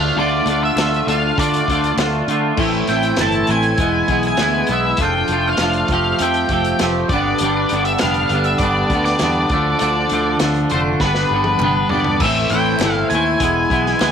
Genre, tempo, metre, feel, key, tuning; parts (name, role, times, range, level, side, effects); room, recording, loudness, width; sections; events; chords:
indie rock; 100 BPM; 4/4; straight; A minor; A4 = 440 Hz
octave-fuzz lead guitar; melody; 0.0-14.1 s; B4 to A5; -20 LUFS; left 2 dB; distortion
glassy synth bell; second line; 0.0-14.1 s; B5 to A6; -30 LUFS; right 12 dB
string machine, violas; sustained chords; 0.0-14.1 s; E3 to G#5; -30 LUFS; equal
twangy electric guitar; riff; 0.0-14.1 s; G2 to G4; -18 LUFS; equal; double-tracked left and right
growling fingered electric bass; bass; 0.0-14.1 s; E1 to D3; -23 LUFS; equal; overdrive
vintage drum kit; drums; 0.5-14.1 s; crash cymbal, hi-hat, kick drum, snare drum, toms; -24 LUFS; equal
group handclap; percussion; 0.5-14.1 s; -34 LUFS; right 13 dB
light reverb, studio ambience; 1960s-style stereo; -15 LUFS; side -7 dB against mid
0.0-12.2 A section; 12.2-14.1 A section
drum fill 11.0-12.2
0.0 Dm; 2.6 Am; 3.8 E; 5.0 Dm/F; 5.9 Fadd9; 7.1 G; 9.5 Dm; 11.0 G; 12.2 Am; 13.4 E